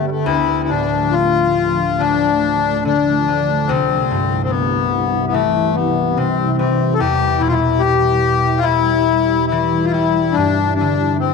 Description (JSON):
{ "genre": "celtic folk, Celtic slow air", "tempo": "71 BPM", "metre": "4/4", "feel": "rubato", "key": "D dorian", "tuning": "A4 = 435 Hz", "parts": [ { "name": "accordion", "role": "melody", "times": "0.0-11.3 s", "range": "G3 to A4", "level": "-16 LUFS", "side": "left 10 dB", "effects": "none" }, { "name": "concert harp", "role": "accompaniment", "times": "0.0-11.3 s", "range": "C2 to D4", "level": "-20 LUFS", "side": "right 1 dB", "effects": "none" }, { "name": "shimmering ambient pad", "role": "sustained chords", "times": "0.0-11.3 s", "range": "C3 to G4", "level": "-23 LUFS", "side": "right 3 dB", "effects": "chorus, built-in reverb" } ], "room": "moderate echo chamber reverb, RT60 1.4 s, studio reverb", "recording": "none", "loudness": "-14 LUFS", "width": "side -4 dB against mid", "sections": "0.3-11.3 A section", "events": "none", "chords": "0.3 Dm; 3.7 C; 7.0 Em; 10.4 G5" }